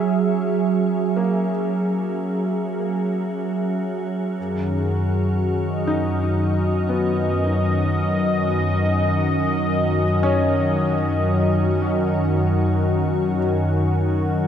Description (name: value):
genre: ambient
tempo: free time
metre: none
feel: none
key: unclear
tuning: A4 = 440 Hz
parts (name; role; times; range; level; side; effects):
- warm analog pad; sustained chords; 0.0-14.5 s; F#2 to E5; -19 LUFS; equal; chorus
- felt-muted upright piano; arpeggios; 0.0-14.5 s; A#3 to E4; -30 LUFS; equal; diffuse ambient delay, shimmer reverb
- organ-like drone; drone; 0.0-14.5 s; F#3 to C#4; -30 LUFS; equal; ensemble chorus, built-in reverb
room: wet huge ambient reverb, RT60 7.5 s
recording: dark, warm production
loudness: -19 LUFS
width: side -9 dB against mid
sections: 0.0-14.5 A section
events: fade-in on felt piano 0.0-14.5; fade-in on synth drone 0.0-14.5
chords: 0.0 F#7sus2; 4.4 B/F#